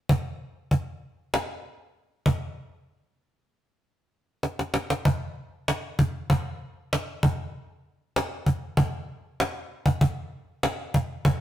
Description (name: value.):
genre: rock.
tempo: 97 BPM.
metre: 4/4.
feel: straight.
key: none.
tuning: none.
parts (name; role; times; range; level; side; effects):
cajon; drums; 0.1-11.4 s; none; -24 LUFS; equal; none.
room: moderate stone room reverb, RT60 1.1 s.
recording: rough rehearsal-room recording, tube saturation.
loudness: -25 LUFS.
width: side -13 dB against mid.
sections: 0.0-5.1 A section; 5.1-11.4 B section.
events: half time 0.0-5.1; drum fill 4.4-5.1.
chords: none.